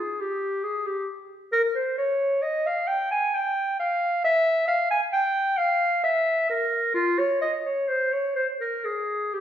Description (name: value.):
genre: classical, baroque-style fantasia for unaccompanied clarinet.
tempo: 66 BPM.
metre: 3/4.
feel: rubato.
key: F minor.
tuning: A4 = 439 Hz.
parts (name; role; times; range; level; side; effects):
warm clarinet; solo; 0.0-9.4 s; F4 to Ab5; -22 LUFS; equal; none.
room: wet recital hall reverb, RT60 1.4 s.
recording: heard from further back in the room.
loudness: -22 LUFS.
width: side -10 dB against mid.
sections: 0.0-9.4 A section.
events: none.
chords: none.